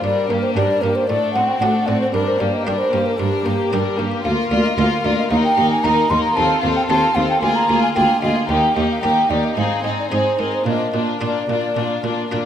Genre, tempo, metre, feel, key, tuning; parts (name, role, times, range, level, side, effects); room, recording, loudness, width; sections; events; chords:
classical, baroque-style concerto movement with solo episodes; 113 BPM; 4/4; straight; A4 = 440 Hz
mellow hollow concert flute; melody; 0.0-12.3 s; G4 to C6; -20 LUFS; equal
warm chamber violin section; melody; 0.0-12.5 s; F4 to Bb4; -27 LUFS; left 5 dB
rich chamber violin section; second line; 0.0-12.5 s; Bb3 to F4; -24 LUFS; left 4 dB
buff-stop harpsichord; accompaniment; 0.0-12.5 s; D2 to Bb4; -28 LUFS; right 1 dB
dark chamber viola section; accompaniment; 0.0-12.5 s; G3 to C4; -24 LUFS; right 1 dB
warm chamber cello section; bass; 0.0-12.4 s; D2 to Bb2; -23 LUFS; right 3 dB
wet recital hall reverb, RT60 1.5 s; -16 LUFS; side -9 dB against mid
0.0-12.5 A section
0.0 Gm; 1.1 D7/A; 2.1 Gm; 4.2 Bb/D; 5.3 Eb5; 6.4 F7/Eb; 7.4 Bb7/D; 8.5 Eb; 9.6 Ab; 10.7 Bb